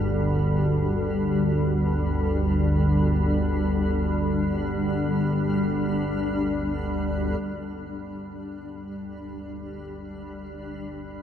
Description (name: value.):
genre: ambient.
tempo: free time.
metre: none.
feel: none.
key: unclear.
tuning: A4 = 442 Hz.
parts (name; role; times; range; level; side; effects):
granular cloud pad; sustained chords; 0.0-11.2 s; G3 to A4; -27 LUFS; left 1 dB; built-in reverb.
organ-like drone; drone; 0.0-11.2 s; G1 to D2; -26 LUFS; equal; ensemble chorus, built-in reverb.
bronze singing bowl; texture; 0.0-7.4 s; none; barely audible; none; none.
room: wet cathedral reverb, RT60 5.5 s.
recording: in a vast, echoing space.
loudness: -22 LUFS.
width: side -9 dB against mid.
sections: 0.0-7.4 A section; 7.4-11.2 B section.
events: filter sweep on synth drone 0.0-7.4.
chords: 0.0 Gsus2.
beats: free time.